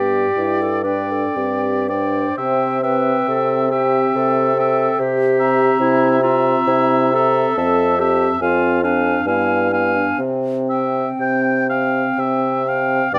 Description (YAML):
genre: classical, slow romantic movement for wind quintet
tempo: 55-75 BPM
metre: 3/4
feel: rubato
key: C major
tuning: A4 = 440 Hz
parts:
  - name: hollow concert flute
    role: melody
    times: 0.0-13.2 s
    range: G5 to Bb5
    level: -27 LUFS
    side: equal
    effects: none
  - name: clear oboe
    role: second line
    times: 0.0-13.2 s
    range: D5 to G5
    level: -24 LUFS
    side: equal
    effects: none
  - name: dark French horn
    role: accompaniment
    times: 0.0-13.2 s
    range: B2 to E4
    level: -27 LUFS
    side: equal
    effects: none
  - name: warm clarinet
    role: accompaniment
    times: 0.0-13.2 s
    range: C4 to C5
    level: -24 LUFS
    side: equal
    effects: none
  - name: mellow bassoon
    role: bass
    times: 0.0-13.2 s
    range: F2 to C3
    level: -22 LUFS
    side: equal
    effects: none
room: light reverb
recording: close, detailed microphones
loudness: -17 LUFS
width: mono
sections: 0.0-13.1 A section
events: none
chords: 0.0 G; 2.4 C; 5.0 C7; 7.6 Fmaj7; 8.4 Fm; 9.3 G7b9; 10.2 C